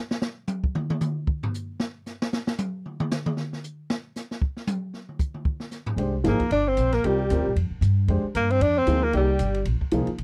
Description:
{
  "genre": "modal jazz",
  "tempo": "229 BPM",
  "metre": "4/4",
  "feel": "swing 58% on 8ths",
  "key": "C minor from 6.0 s",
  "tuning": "A4 = 440 Hz",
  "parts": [
    { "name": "open jazz drum kit", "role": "drums", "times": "0.1-10.2 s", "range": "hi-hat, kick drum, ride cymbal, snare drum, toms", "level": "-30 LUFS", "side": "equal", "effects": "none" },
    { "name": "warm upright piano", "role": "accompaniment", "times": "6.0-10.1 s", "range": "F3 to D5", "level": "-28 LUFS", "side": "equal", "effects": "none" },
    { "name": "upright bass", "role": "bass", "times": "6.0-10.2 s", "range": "G1 to G2", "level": "-26 LUFS", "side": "equal", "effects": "none" },
    { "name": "breathy tenor saxophone", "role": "melody", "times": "6.3-9.6 s", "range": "G3 to D4", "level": "-26 LUFS", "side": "equal", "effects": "none" },
    { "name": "warm alto saxophone", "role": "second line", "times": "6.3-9.6 s", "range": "G4 to D5", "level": "-32 LUFS", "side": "equal", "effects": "none" }
  ],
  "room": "little or no reverb",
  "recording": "dry, close 1970s-style studio recording",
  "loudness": "-25 LUFS",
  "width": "mono",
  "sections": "0.0-6.0 A section; 6.0-10.2 B section",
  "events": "drum solo 0.0-6.0",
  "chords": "0.0 N.C.; 6.0 C9sus4",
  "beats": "0.23 0.49 | 0.75 1.01 1.28 1.54 | 1.80 2.06 2.32 2.59 | 2.85 3.11 3.37 3.63 | 3.90 4.16 4.42 4.68 | 4.94 5.20 5.46 5.73 | 5.99 6.25 6.51 6.78 | 7.04 7.30 7.56 7.82 | 8.09 8.35 8.61 8.87 | 9.14 9.40 9.66 9.92 | 10.19"
}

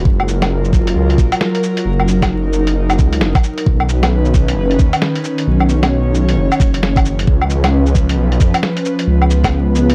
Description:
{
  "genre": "future garage",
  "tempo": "133 BPM",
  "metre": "4/4",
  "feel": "swing 61% on 16ths",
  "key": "unclear",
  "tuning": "A4 = 438 Hz",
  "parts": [
    { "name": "swelling detuned saw bass", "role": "bass", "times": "0.0-9.9 s", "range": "F#1 to E#2", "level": "-17 LUFS", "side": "equal", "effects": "tube saturation, sidechain pumping" },
    { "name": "airy breathy pad", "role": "sustained chords", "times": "0.1-9.9 s", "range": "D#3 to C#5", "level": "-20 LUFS", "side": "equal", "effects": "chorus, sidechain pumping" },
    { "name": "electronic kick drum", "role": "drums", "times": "0.1-9.5 s", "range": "none", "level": "-15 LUFS", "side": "equal", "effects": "studio reverb" },
    { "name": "lo-fi sampler-style drum kit", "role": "drums", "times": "0.2-9.9 s", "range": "cabasa, hi-hat, snare drum, woodblock", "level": "-22 LUFS", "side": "equal", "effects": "studio reverb" }
  ],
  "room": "little or no reverb",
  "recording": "dry, gritty hardware recording, vinyl crackle",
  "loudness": "-14 LUFS",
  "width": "mono",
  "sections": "0.0-9.9 A section",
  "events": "none",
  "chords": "0.1 F#maj7; 3.7 Badd9; 7.3 C#7",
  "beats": "| 0.05 0.51 0.96 1.41 | 1.86 2.31 2.76 3.21 | 3.66 4.11 4.57 5.02 | 5.47 5.92 6.37 6.82 | 7.27 7.72 8.17 8.63 | 9.08 9.53"
}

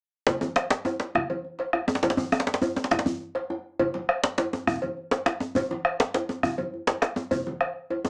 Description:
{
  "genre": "west african traditional, West African drum ensemble",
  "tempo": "136 BPM (dotted quarters)",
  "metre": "12/8",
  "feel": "straight",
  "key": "none",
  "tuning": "none",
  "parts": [
    { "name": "bombo", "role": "percussion", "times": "0.3-7.7 s", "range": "none", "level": "-29 LUFS", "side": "equal", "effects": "none" },
    { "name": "congas", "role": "percussion", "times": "0.3-8.0 s", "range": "none", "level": "-40 LUFS", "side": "equal", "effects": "none" },
    { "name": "cowbell", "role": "percussion", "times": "0.3-8.0 s", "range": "none", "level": "-33 LUFS", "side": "equal", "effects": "none" },
    { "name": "djembe", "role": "percussion", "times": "0.3-8.1 s", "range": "none", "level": "-35 LUFS", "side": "equal", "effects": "none" },
    { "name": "djembe", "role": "percussion", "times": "0.3-8.1 s", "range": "none", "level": "-29 LUFS", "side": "equal", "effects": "none" }
  ],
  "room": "moderate small room reverb, RT60 0.5 s",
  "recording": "small speaker sound",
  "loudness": "-27 LUFS",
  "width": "mono",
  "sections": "0.3-8.1 A section",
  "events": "drum fill 6.7-7.3",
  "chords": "none",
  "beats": "| 0.27 0.71 1.15 1.59 | 2.03 2.47 2.91 3.35 | 3.79 4.24 4.68 5.12 | 5.56 6.00 6.44 6.88 | 7.32 7.75"
}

